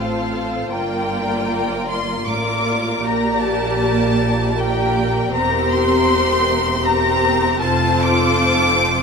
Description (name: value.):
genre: classical, slow romantic movement for string orchestra.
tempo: 78 BPM.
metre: 3/4.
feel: rubato.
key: unclear.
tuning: A4 = 437 Hz.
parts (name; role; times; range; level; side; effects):
rich studio violin section; melody; 0.0-9.0 s; F5 to D6; -20 LUFS; left 2 dB; none.
warm symphonic violin section; second line; 0.0-9.0 s; A4 to D5; -24 LUFS; left 2 dB; none.
rich symphonic viola section; accompaniment; 0.0-9.0 s; Bb3 to G4; -21 LUFS; left 1 dB; none.
clear symphonic cello section; bass; 0.0-9.0 s; E2 to Bb2; -25 LUFS; right 3 dB; none.
clear symphonic double bass section; bass; 0.0-9.0 s; E1 to Bb1; -26 LUFS; right 4 dB; none.
room: moderate recital hall reverb, RT60 1.4 s.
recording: none.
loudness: -15 LUFS.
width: side -5 dB against mid.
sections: 0.0-9.0 A section.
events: none.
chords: 0.0 F/A; 0.7 Gm7; 3.0 Gm/Bb; 5.3 C7/E; 7.6 F.